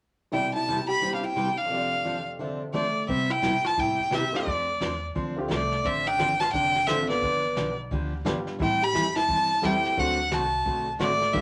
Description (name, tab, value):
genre	country, western swing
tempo	174 BPM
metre	4/4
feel	swing 62% on 8ths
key	C major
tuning	A4 = 437 Hz
part	clear fiddle	melody	0.3-11.4 s	D5 to B5	-27 LUFS	equal	none
part	hollow-body jazz guitar	second line	0.3-11.4 s	A3 to G4	-35 LUFS	equal	none
part	picked steel-string acoustic guitar	accompaniment	0.3-11.4 s	C3 to A4	-34 LUFS	equal	none
part	warm upright piano	accompaniment	0.3-11.4 s	C2 to E5	-35 LUFS	equal	none
part	upright bass	bass	3.1-11.4 s	F1 to C3	-38 LUFS	equal	none
part	vintage brush drum kit	drums	3.1-11.4 s	brushed snare drum, hi-hat, kick drum, snare drum	-38 LUFS	equal	none
room	wet small room ambience, RT60 0.5 s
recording	none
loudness	-26 LUFS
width	mono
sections	0.3-3.1 A section; 3.1-11.4 B section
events	none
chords	0.3 Cmaj7; 1.7 F69; 3.1 Cmaj7; 4.5 F6; 5.8 Dm7; 7.2 G7; 8.6 Am7; 10.0 D7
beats	| 0.33 0.68 1.02 1.37 | 1.72 2.06 2.40 2.75 | 3.10 3.44 3.78 4.13 | 4.47 4.82 5.16 5.50 | 5.85 6.19 6.54 6.88 | 7.22 7.57 7.91 8.25 | 8.60 8.94 9.28 9.63 | 9.97 10.31 10.66 11.00 | 11.34